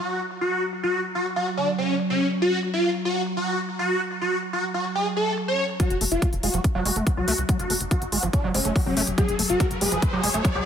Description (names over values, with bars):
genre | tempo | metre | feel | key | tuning
psychedelic trance | 142 BPM | 4/4 | straight | F# harmonic minor | A4 = 441 Hz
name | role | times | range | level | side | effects
swarming rave lead | melody | 0.0-10.7 s | C#4 to C#5 | -24 LUFS | equal | chorus, phaser, sidechain pumping, digital delay
evolving wavetable pad | sustained chords | 0.0-10.7 s | F#3 | -31 LUFS | right 1 dB | chorus, built-in reverb, phaser, sidechain pumping
electronic hi-hat | drums | 0.1-10.5 s | none | -28 LUFS | left 2 dB | high-pass filter on hats, low-pass filter on hats, high-pass filter on cymbals, low-pass filter on cymbals, high-pass filter on room, low-pass filter on room
overdriven acid bass | riff | 5.8-10.6 s | E#3 to A3 | -29 LUFS | moving between left 5 dB and right 5 dB | auto-pan, cassette tape, sidechain pumping, digital delay
electronic kick drum | drums | 5.8-10.5 s | none | -23 LUFS | equal | none
riser | sound effects | 7.4-10.7 s | none | -35 LUFS | equal | none
tight sequencer bass | bass | 5.9-10.6 s | F#1 to C#2 | -30 LUFS | equal | none
room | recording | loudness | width
light reverb, digital ambience | none | -21 LUFS | side -8 dB against mid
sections
0.0-5.8 A section; 5.8-10.7 B section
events
filter sweep on ambient pad 0.0-5.8; build-up 5.8-10.7; riser 7.4-10.7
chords
0.0 N.C.; 5.8 F#5